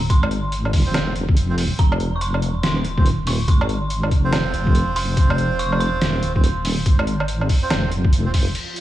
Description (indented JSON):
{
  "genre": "deep dubstep",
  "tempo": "142 BPM",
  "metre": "4/4",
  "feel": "swing 62% on 16ths, half-time",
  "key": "F minor",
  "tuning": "A4 = 440 Hz",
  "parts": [
    { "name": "deep soft wobble bass", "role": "bass", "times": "0.0-8.5 s", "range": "Eb1 to Ab1", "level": "-21 LUFS", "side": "equal", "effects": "chorus, tube saturation" },
    { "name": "dark detuned synth bell", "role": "melody", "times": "0.1-8.1 s", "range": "Bb5 to Db6", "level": "-30 LUFS", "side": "equal", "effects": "chorus, dub echo" },
    { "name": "electronic kick drum", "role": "drums", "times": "0.1-8.4 s", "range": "none", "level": "-16 LUFS", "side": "equal", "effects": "none" },
    { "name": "trip hop sampler-style drum kit", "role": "drums", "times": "0.1-8.8 s", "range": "crash cymbal, hi-hat, snare drum, woodblock", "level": "-25 LUFS", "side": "right 1 dB", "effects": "none" },
    { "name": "melodica", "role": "stabs", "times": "0.9-8.3 s", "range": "C4 to C5", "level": "-28 LUFS", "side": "right 4 dB", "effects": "low-pass filter, dub echo" },
    { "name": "wind-like tuned noise texture", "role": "texture", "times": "8.6-8.8 s", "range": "F3 to F4", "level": "-36 LUFS", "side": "right 4 dB", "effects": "built-in reverb" }
  ],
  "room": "little or no reverb",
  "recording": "vinyl crackle, small room ambience",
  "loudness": "-17 LUFS",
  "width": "side -14 dB against mid",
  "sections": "0.0-8.6 A section",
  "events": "none",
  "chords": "0.0 F5"
}